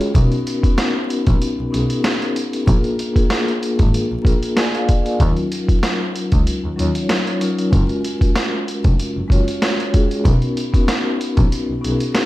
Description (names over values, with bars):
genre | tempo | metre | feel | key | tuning
hip hop, boom-bap hip-hop | 95 BPM | 4/4 | swing 55% on 16ths | unclear | A4 = 444 Hz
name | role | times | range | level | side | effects
vibraphone with soft mallets | accompaniment | 0.0-12.3 s | Gb3 to Ab5 | -20 LUFS | left 1 dB | cassette tape, high-pass filter, low-pass filter, plate reverb
boom bap sampler-style drum kit | drums | 0.0-12.3 s | hi-hat, kick drum, snare drum | -18 LUFS | equal | none
clear double bass | bass | 0.2-11.9 s | F1 to Eb2 | -20 LUFS | equal | none
room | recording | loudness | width
light reverb | vinyl crackle | -16 LUFS | side -16 dB against mid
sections
0.0-12.3 A section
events
none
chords
0.1 Bmaj7; 2.7 Bb7; 5.2 Ebm7; 7.7 Gbmaj7; 10.3 Bmaj7